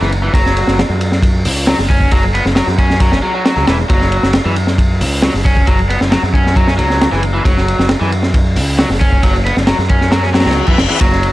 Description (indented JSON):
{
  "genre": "breakbeat, breaks",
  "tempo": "135 BPM",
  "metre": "4/4",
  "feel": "straight",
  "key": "unclear",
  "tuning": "A4 = 441 Hz",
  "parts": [
    { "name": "crunchy overdriven guitar", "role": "riff", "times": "0.0-11.3 s", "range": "E3 to C#4", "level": "-17 LUFS", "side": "equal", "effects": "vintage 12-bit sampler grit, ping-pong delay" },
    { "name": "growling picked electric bass", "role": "bass", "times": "0.0-11.3 s", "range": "E1 to F#2", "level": "-16 LUFS", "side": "equal", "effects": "overdrive, tube saturation" },
    { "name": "crunchy breakbeat drum kit", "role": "drums", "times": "0.0-11.3 s", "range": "hi-hat, kick drum, ride cymbal, snare drum", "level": "-14 LUFS", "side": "equal", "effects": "none" },
    { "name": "reverse cymbal", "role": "sound effects", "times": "10.3-11.0 s", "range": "none", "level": "-20 LUFS", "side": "left 5 dB", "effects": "none" }
  ],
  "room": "small room reverb",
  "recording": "dark, warm production",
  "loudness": "-10 LUFS",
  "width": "side -16 dB against mid",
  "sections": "0.0-11.3 A section",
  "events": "reverse cymbal 10.3-11.0",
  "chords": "0.0 F#5"
}